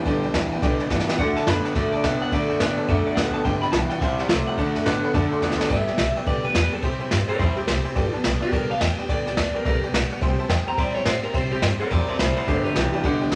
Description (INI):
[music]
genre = rockabilly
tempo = 213 BPM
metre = 4/4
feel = swing 62% on 8ths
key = G major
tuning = A4 = 440 Hz
[part]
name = picked steel-string acoustic guitar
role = accompaniment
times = 0.0-13.4 s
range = G2 to A4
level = -32 LUFS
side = equal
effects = none
[part]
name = electric guitar through a small old amp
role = riff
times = 0.0-5.7, 12.5-13.4 s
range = G2 to B3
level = -27 LUFS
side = equal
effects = none
[part]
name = tack piano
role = accompaniment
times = 0.1-13.4 s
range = A4 to C6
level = -34 LUFS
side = equal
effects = none
[part]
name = upright bass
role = bass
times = 0.1-13.4 s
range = G1 to C3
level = -30 LUFS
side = equal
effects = none
[part]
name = jazz brush drum kit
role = drums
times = 0.1-13.4 s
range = crash cymbal, kick drum, ride cymbal, snare drum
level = -28 LUFS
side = equal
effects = none
[part]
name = electric guitar through a small old amp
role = melody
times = 1.2-13.4 s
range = B3 to B5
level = -30 LUFS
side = equal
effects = none
[sound]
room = moderate large studio reverb, RT60 1.0 s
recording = none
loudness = -23 LUFS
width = mono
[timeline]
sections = 0.0-5.7 A section; 5.7-13.4 B section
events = drum fill 0.9, 5.4; clean electric guitar solo 5.7-13.4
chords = 0.0 G; 1.2 D; 3.4 G; 4.0 C; 4.6 D; 5.7 G; 6.8 C; 8.0 G; 10.2 C; 12.5 G